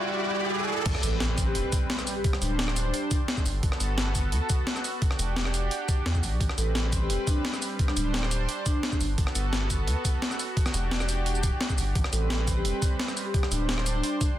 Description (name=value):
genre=liquid drum and bass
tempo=173 BPM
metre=4/4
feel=straight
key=A dorian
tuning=A4 = 443 Hz
part: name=lush unison pad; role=sustained chords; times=0.0-14.4 s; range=G3 to D5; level=-32 LUFS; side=right 1 dB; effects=chorus
part: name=riser and impact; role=sound effects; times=0.0-2.2 s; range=none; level=-32 LUFS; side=right 1 dB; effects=none
part: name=saturated sub bass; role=bass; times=0.9-14.0 s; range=D1 to E2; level=-28 LUFS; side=equal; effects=none
part: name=breakbeat sampler-style drum kit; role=drums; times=0.9-14.3 s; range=crash cymbal, hi-hat, rim click, shaker, snare drum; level=-31 LUFS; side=equal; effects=high-pass filter on snare, small room reverb, high-pass filter on hats, high-pass filter on perc, high-pass filter on cymbals
part: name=electronic kick drum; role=drums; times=0.9-14.3 s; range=none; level=-27 LUFS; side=equal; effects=high-pass filter on kick, small room reverb
part: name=vibraphone with soft mallets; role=melody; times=1.0-3.1, 6.6-9.0, 12.1-14.2 s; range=D4 to A4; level=-34 LUFS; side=equal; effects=vintage 12-bit sampler grit, digital delay
room=light reverb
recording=dense, heavily limited modern master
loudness=-24 LUFS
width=side -12 dB against mid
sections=0.9-14.4 A section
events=break 0.0-0.9; riser 0.0-0.9; drop 0.9-14.4; impact 0.9-2.2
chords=0.0 Em9; 0.9 Am9; 2.2 D7sus4; 3.5 Gmaj9; 5.0 Em9; 6.4 Am9; 7.8 D7sus4; 9.0 Gmaj9; 10.6 Em9; 12.0 Am9; 13.3 D7sus4